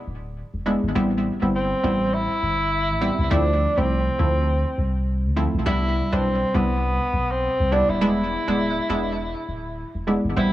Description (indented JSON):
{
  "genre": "afrobeats",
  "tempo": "102 BPM",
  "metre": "4/4",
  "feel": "swing 58% on 16ths",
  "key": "unclear",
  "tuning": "A4 = 440 Hz",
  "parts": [
    { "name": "punchy sub bass", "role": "bass", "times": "0.1-10.5 s", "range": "D1 to D2", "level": "-25 LUFS", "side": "equal", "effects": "none" },
    { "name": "analog pluck", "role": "accompaniment", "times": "0.7-10.5 s", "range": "F3 to B4", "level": "-23 LUFS", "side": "equal", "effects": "chorus, tape echo" },
    { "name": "breathy tenor saxophone", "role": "melody", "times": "1.6-10.5 s", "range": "B3 to E4", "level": "-24 LUFS", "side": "equal", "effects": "tape echo" }
  ],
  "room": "light reverb, small room ambience",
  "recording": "echo-heavy mix",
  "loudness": "-20 LUFS",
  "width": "side -14 dB against mid",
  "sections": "0.0-5.7 A section; 5.7-10.5 B section",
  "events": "none",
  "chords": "0.0 E7; 1.0 Am7; 3.3 Dm7; 5.7 Cmaj7; 8.0 E7"
}